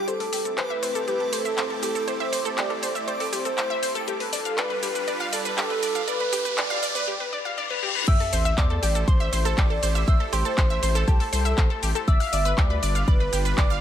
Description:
progressive house; 120 BPM; 4/4; straight; A minor; A4 = 440 Hz
warm velvety synth lead; melody; 0.0-13.8 s; A4 to E5; -28 LUFS; equal; chorus, sidechain pumping, ping-pong delay
supersaw pad; sustained chords; 0.0-13.8 s; G3 to C5; -35 LUFS; right 1 dB; sidechain pumping
wide unison pluck; arpeggios; 0.0-13.8 s; G4 to F6; -29 LUFS; moving between left 6 dB and right 6 dB; auto-pan, sidechain pumping, ping-pong delay
backwards swelling texture; texture; 0.0-7.1 s; D6; -41 LUFS; right 3 dB; built-in reverb, sidechain pumping
house drum kit; drums; 0.1-13.8 s; cabasa, crash cymbal, handclaps, hi-hat; -30 LUFS; equal
riser, reverse cymbal and sub drop; sound effects; 2.4-10.1 s; -32 LUFS; left 1 dB
soft synth bell; second line; 8.1-13.8 s; A5 to E6; -33 LUFS; equal; chorus, phaser, sidechain pumping, ping-pong delay
saturated sub bass; bass; 8.1-13.8 s; G1 to E2; -26 LUFS; equal; sidechain pumping
electronic kick drum; drums; 8.1-13.7 s; -20 LUFS; equal
light reverb, digital ambience; high-pass filter; -21 LUFS; side -10 dB against mid
0.0-8.1 A section; 8.1-13.8 B section
build-up 0.0-8.1; filter sweep on synth pluck 0.0-8.1; filter sweep 0.0-8.1; riser 2.4-7.1; break 7.1-8.1; reverse cymbal 7.1-8.1; drop 8.1-13.8; impact 8.1-10.1
0.1 Am7; 4.1 G7; 8.1 Am7; 12.1 G7
| 0.08 0.58 1.08 1.58 | 2.08 2.58 3.08 3.58 | 4.08 4.58 5.08 5.58 | 6.08 6.58 7.08 7.58 | 8.08 8.58 9.08 9.58 | 10.08 10.58 11.08 11.58 | 12.08 12.58 13.08 13.58

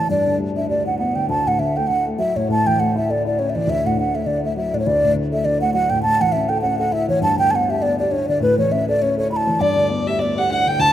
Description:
celtic folk; 202 BPM; 4/4; swing 57% on 8ths; D major; A4 = 439 Hz
mellow hollow wooden flute; melody; 0.0-10.9 s; B4 to B5; -18 LUFS; right 1 dB
dark baby grand piano; accompaniment; 0.0-10.9 s; D2 to A4; -22 LUFS; left 1 dB
pedal harmonium; drone; 0.0-10.9 s; D2 to A2; -30 LUFS; left 3 dB
warm fiddle; second line; 9.6-10.9 s; D5 to A5; -22 LUFS; left 3 dB; slapback echo
wet plate reverb, RT60 2.8 s; rough home demo mix; -17 LUFS; side -11 dB against mid
0.0-4.8 A section; 4.8-10.9 A section
0.1 G; 1.3 D; 2.5 A; 3.7 D; 6.0 A; 7.2 Gadd9; 8.4 A; 9.6 G
| 0.10 0.40 0.69 0.99 | 1.29 1.58 1.88 2.18 | 2.48 2.77 3.07 3.37 | 3.66 3.96 4.26 4.55 | 4.85 5.15 5.44 5.74 | 6.04 6.33 6.63 6.93 | 7.22 7.52 7.82 8.12 | 8.41 8.71 9.01 9.30 | 9.60 9.90 10.20 10.49 | 10.79

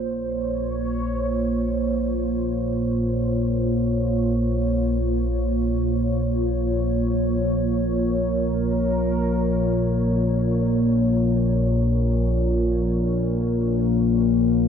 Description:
dark ambient drone; free time; Bb minor; A4 = 441 Hz
sweeping resonant pad; sustained chords; 0.0-14.7 s; Bb3 to Db5; -24 LUFS; right 1 dB; chorus
analog drone; drone; 0.0-14.7 s; Bb1 to Bb2; -22 LUFS; left 1 dB; chorus
wet cathedral reverb, RT60 6.5 s; dark, warm production; -20 LUFS; side -7 dB against mid
0.0-14.7 A section
0.0 Bbm
free time

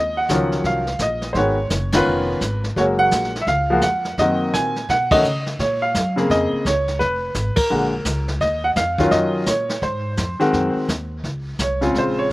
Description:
jazz piano trio; 170 BPM; 4/4; swing 63% on 8ths; Db major; A4 = 440 Hz
clear grand piano; melody; 0.0-12.3 s; Db3 to Ab5; -18 LUFS; equal
upright bass; bass; 0.0-12.3 s; F1 to Db3; -25 LUFS; equal
jazz brush drum kit; drums; 0.3-12.3 s; brushed snare drum, crash cymbal, hi-hat, kick drum, ride cymbal, snare drum; -25 LUFS; equal
little or no reverb; recorded outdoors, with no room sound; -17 LUFS; side -18 dB against mid
0.0-11.2 A section; 11.2-12.3 B section
band accent 1.9, 5.1, 7.5; grand piano solo 11.2-12.3
0.0 Ebm9; 1.4 Abm7; 2.1 Db9; 2.8 Gbmaj9; 4.2 Cm7b5; 4.9 Cbadd9; 5.6 Bbm9; 7.0 Fdim; 7.7 Bb7alt; 8.4 Ebm9; 9.8 Ab7; 11.2 Dbmaj7
0.29 0.65 1.00 | 1.35 1.71 2.06 2.41 | 2.77 3.12 3.47 3.83 | 4.18 4.53 4.88 5.24 | 5.59 5.94 6.30 6.65 | 7.00 7.36 7.71 8.06 | 8.41 8.77 9.12 9.47 | 9.83 10.18 10.54 10.89 | 11.24 11.60 11.95 12.30

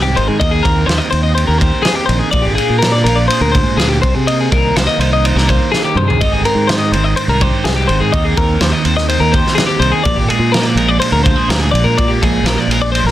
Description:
math rock and midwest emo; 124 BPM; 4/4; straight; A4 = 440 Hz
twelve-string electric guitar; accompaniment; 0.0-13.1 s; Eb2 to C5; -19 LUFS; right 8 dB
twelve-string electric guitar; arpeggios; 0.0-13.1 s; G4 to Eb5; -16 LUFS; left 4 dB; plate reverb
modern bright fingered electric bass; bass; 0.0-13.1 s; G1 to C3; -16 LUFS; equal
loose indie drum kit; drums; 0.2-13.1 s; kick drum, ride cymbal, snare drum, toms; -17 LUFS; equal
light reverb; dense, heavily limited modern master; -11 LUFS; side -13 dB against mid
0.0-13.1 A section
drum fill 5.7-6.2
0.4 Eb6; 2.3 Bb7; 4.0 Cm7; 6.2 Abmaj7; 8.1 Eb6; 10.1 Bb7
| 0.40 0.88 1.36 1.85 | 2.33 2.81 3.30 3.78 | 4.26 4.75 5.23 5.71 | 6.19 6.68 7.16 7.64 | 8.12 8.60 9.09 9.57 | 10.05 10.53 11.01 11.49 | 11.97 12.46 12.94

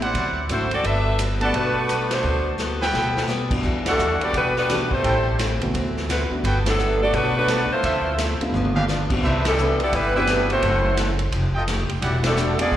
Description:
jazz, big band swing; 172 BPM; 4/4; swing 63% on 8ths; G major, E minor from 3.6 s; A4 = 443 Hz
picked steel-string acoustic guitar; accompaniment; 0.0-12.8 s; F#2 to B4; -30 LUFS; left 4 dB; slapback echo
clear trumpet section; stabs; 0.0-12.2 s; D4 to A5; -28 LUFS; right 2 dB; slapback echo
upright bass; bass; 0.0-12.8 s; E1 to E2; -25 LUFS; equal
swinging big-band drum kit; drums; 0.0-12.8 s; crash cymbal, hi-hat, kick drum, ride cymbal, snare drum, toms; -27 LUFS; equal
edgy saxophone section; melody; 0.5-12.8 s; F#3 to E5; -22 LUFS; equal; slapback echo
dark baby grand piano; accompaniment; 0.5-12.8 s; C3 to B4; -29 LUFS; equal
clear trombone section; second line; 3.9-12.8 s; B2 to D4; -30 LUFS; right 4 dB; slapback echo
light reverb, small room ambience; live gig heard through the venue's PA, recital hall reverb; -19 LUFS; side -12 dB against mid
0.0-3.6 A section; 3.6-12.8 B section
band accent 2.1, 3.8, 6.6, 9.4, 12.2; drum fill 2.6-3.3, 8.5-8.9
0.1 D9; 0.8 Gmaj9; 3.6 Em9; 5.0 Am7; 5.7 D13; 6.4 Gmaj9; 7.8 Dm9; 8.5 G7; 9.2 Cmaj9; 10.6 F#m7b5; 11.3 F9; 12.0 Em9
0.15 0.49 | 0.84 1.19 1.54 1.89 | 2.24 2.59 2.94 3.29 | 3.64 3.99 4.34 4.69 | 5.04 5.39 5.74 6.09 | 6.44 6.79 7.14 7.49 | 7.84 8.19 8.54 8.89 | 9.24 9.59 9.93 10.28 | 10.63 10.98 11.33 11.68 | 12.02 12.37 12.72

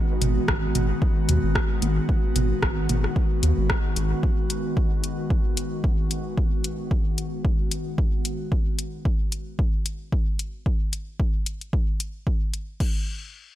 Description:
dub techno; 112 BPM; 4/4; swing 56% on 16ths; G# minor; A4 = 440 Hz
airy breathy pad; sustained chords; 0.0-8.5 s; D#3 to F#4; -28 LUFS; left 1 dB; chorus, sidechain pumping
round analog bass; bass; 0.2-4.1 s; G#1 to D#2; -23 LUFS; equal; sidechain pumping
punchy analog drum machine; drums; 0.2-12.9 s; crash cymbal, hi-hat, rim click; -29 LUFS; left 2 dB; overdrive, dub echo
electronic toms and congas; percussion; 0.2-3.0 s; -30 LUFS; right 4 dB; sidechain pumping on toms, sidechain pumping on perc, dub echo
electronic kick drum; drums; 0.5-12.9 s; -24 LUFS; equal
little or no reverb; -22 LUFS; side -13 dB against mid
0.0-12.8 A section
0.0 G#m7; 12.8 N.C.
0.48 1.02 1.55 | 2.09 2.62 3.16 3.70 | 4.23 4.77 5.30 5.84 | 6.38 6.91 7.45 7.98 | 8.52 9.05 9.59 10.12 | 10.66 11.20 11.73 12.27 | 12.80

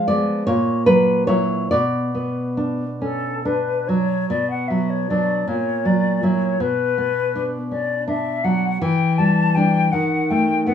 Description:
romantic duo for flute and classical guitar; 46-56 BPM (dotted quarters); 6/8; rubato; B minor; A4 = 441 Hz
nylon-string guitar; accompaniment; 0.0-10.7 s; A#2 to D5; -19 LUFS; equal
mellow hollow silver concert flute; melody; 3.0-10.7 s; A4 to A5; -22 LUFS; left 6 dB
moderate studio reverb, RT60 0.7 s; small room ambience; -17 LUFS; side -8 dB against mid
0.0-4.3 A section; 4.3-10.7 A section
0.5 F#7/A#; 1.7 Bm; 5.5 F#7/A#; 6.6 Bm; 8.8 Em7; 9.9 B7/D# (rootless)
0.47 | 1.72 3.01 | 4.29 5.47 | 6.60 7.71 | 8.82 9.93

